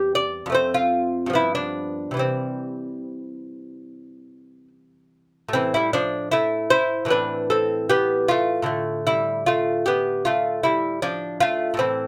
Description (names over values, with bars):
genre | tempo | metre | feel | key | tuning
classical, baroque-style dance for lute | 70-79 BPM | 4/4 | rubato | C major | A4 = 438 Hz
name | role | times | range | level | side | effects
lute | solo | 0.0-12.1 s | E2 to D5 | -23 LUFS | equal | none
room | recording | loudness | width
little or no reverb | close, detailed microphones | -22 LUFS | mono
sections
0.0-5.5 A section; 5.5-12.1 A section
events
none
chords
0.0 C/E; 0.6 F; 1.4 G7; 2.2 C; 5.5 A5; 7.1 Am; 8.7 Dm/A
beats
0.57 1.37 | 2.20 3.05 3.89 4.72 | 5.55 6.33 7.12 7.90 | 8.69 9.47 10.25 11.03 | 11.80